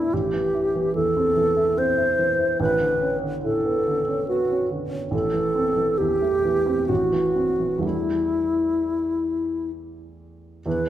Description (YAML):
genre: classical, impressionist duo for alto flute and grand piano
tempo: 62-74 BPM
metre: 3/4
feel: rubato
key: E minor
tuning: A4 = 439 Hz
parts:
  - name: alto flute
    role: melody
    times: 0.0-10.9 s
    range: E4 to C5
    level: -21 LUFS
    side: equal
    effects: none
  - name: dark baby grand piano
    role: accompaniment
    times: 0.0-10.9 s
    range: A1 to F#4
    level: -26 LUFS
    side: right 2 dB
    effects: none
room: wet recital hall reverb, RT60 1.6 s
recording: none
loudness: -20 LUFS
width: side -12 dB against mid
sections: 0.0-10.7 A section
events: none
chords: 0.1 Am7; 2.6 Bm9/A; 5.1 Am7; 7.8 Em11